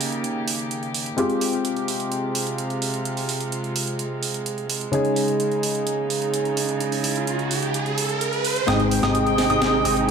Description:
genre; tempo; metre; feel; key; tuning
EDM, festival progressive house; 128 BPM; 4/4; straight; F minor; A4 = 439 Hz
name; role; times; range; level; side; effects
felt-muted upright piano; accompaniment; 0.0-10.1 s; Ab2 to G5; -26 LUFS; left 1 dB; ping-pong delay
dark chamber string section; sustained chords; 0.0-10.1 s; C3 to G5; -27 LUFS; right 2 dB; low-pass filter
house drum kit; drums; 0.0-10.1 s; hi-hat, snare drum; -28 LUFS; right 4 dB; none
riser; sound effects; 6.3-10.1 s; none; -28 LUFS; right 3 dB; none
plucky unison lead; arpeggios; 8.7-10.1 s; Eb6; -24 LUFS; equal; cassette tape, ping-pong delay
dense compressed supersaw; riff; 8.7-10.1 s; C4 to Eb5; -22 LUFS; right 2 dB; vintage 12-bit sampler grit, low-pass filter, ping-pong delay
fat analog bass; bass; 8.7-10.1 s; Ab1; -27 LUFS; right 1 dB; none
room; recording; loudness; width
moderate digital room reverb, RT60 1.2 s; none; -21 LUFS; side -6 dB against mid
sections
0.0-8.7 A section; 8.7-10.1 B section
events
filter sweep on string section 0.0-8.7; riser 6.3-8.7; build-up 8.7-10.1; drum fill 8.7-10.1; filter sweep on supersaw synth 8.7-10.1; filter sweep on digital synth lead 8.7-10.1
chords
0.0 Eb7; 1.2 Fmadd9; 4.9 Dbsus2; 8.7 Abmaj7

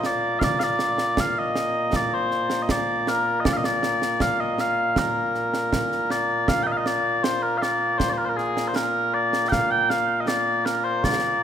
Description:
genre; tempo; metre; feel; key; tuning
scottish traditional, Scottish pipe music; 79 BPM; 2/4; straight; Bb major; A4 = 440 Hz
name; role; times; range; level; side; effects
mellow small bagpipes; melody; 0.0-11.4 s; Bb2 to G5; -21 LUFS; left 1 dB; none
concert snare drum and concert bass drum; drums; 0.0-11.2 s; none; -28 LUFS; right 2 dB; none
room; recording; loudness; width
moderate concert hall reverb, RT60 2.3 s; minimal, uncompressed stereo recording; -21 LUFS; side -9 dB against mid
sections
0.0-6.5 A section; 6.5-11.4 B section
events
none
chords
none

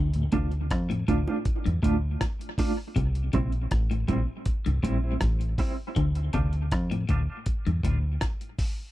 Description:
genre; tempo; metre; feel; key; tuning
dub reggae; 80 BPM; 4/4; straight; D minor; A4 = 441 Hz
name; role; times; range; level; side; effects
clean electric guitar; arpeggios; 0.0-8.0 s; G2 to D3; -33 LUFS; left 3 dB; spring reverb, tape echo
deep dub fingered electric bass; bass; 0.0-8.2 s; A1 to F2; -26 LUFS; equal; none
dusty soul sampler-style drum kit; drums; 0.1-8.8 s; hi-hat, kick drum, rim click; -29 LUFS; equal; none
mellow electric guitar; accompaniment; 0.3-8.7 s; G3 to F4; -30 LUFS; right 3 dB; tremolo, high-pass filter, tape echo
bongos; percussion; 1.3-1.4 s; none; -41 LUFS; right 4 dB; none
room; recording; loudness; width
light reverb; dry, close 1970s-style studio recording; -24 LUFS; side -15 dB against mid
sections
0.0-8.9 A section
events
break 0.0-8.9; filter sweep on clean electric guitar 3.0-8.9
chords
0.0 Dm; 3.0 C; 6.0 Dm

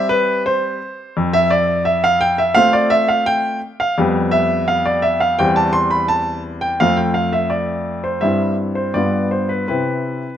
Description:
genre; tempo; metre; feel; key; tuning
classical-period piano sonatina; 85 BPM; 4/4; straight; C major; A4 = 441 Hz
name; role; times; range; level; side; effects
clear baby grand piano; solo; 0.0-10.4 s; E2 to C6; -15 LUFS; equal; none
room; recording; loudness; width
moderate recital hall reverb, RT60 1.4 s; close, detailed microphones; -15 LUFS; side -10 dB against mid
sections
0.0-10.4 A section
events
none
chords
0.0 C5; 1.2 F; 4.0 G7/F; 5.4 C/E; 6.8 Fmaj13; 8.2 C/G; 9.0 G7; 9.7 C

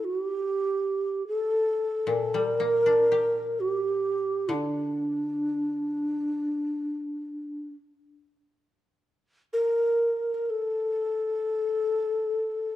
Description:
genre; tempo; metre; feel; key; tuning
japanese traditional, Japanese chamber music; free time; none; none; G minor; A4 = 439 Hz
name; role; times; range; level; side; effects
breathy mellow shakuhachi; melody; 0.0-12.8 s; D4 to Bb4; -25 LUFS; equal; none
koto; accompaniment; 2.1-7.7 s; Bb2 to G4; -32 LUFS; left 4 dB; none
room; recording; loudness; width
moderate recital hall reverb, RT60 1.6 s; dark, warm production; -25 LUFS; side -13 dB against mid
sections
0.0-12.8 A section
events
none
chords
none

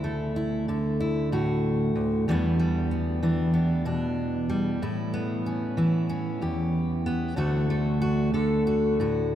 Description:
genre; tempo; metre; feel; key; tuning
folk, solo fingerstyle acoustic guitar; 94 BPM; 4/4; straight; D major; A4 = 440 Hz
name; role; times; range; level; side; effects
fingerpicked steel-string acoustic guitar; solo; 0.0-9.3 s; D2 to A4; -24 LUFS; equal; none
room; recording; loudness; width
wet cathedral reverb, RT60 5.9 s; in a vast, echoing space; -24 LUFS; side -11 dB against mid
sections
0.0-9.3 A section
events
none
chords
0.0 Dsus2; 2.3 Em7; 4.8 Aadd9; 7.4 D

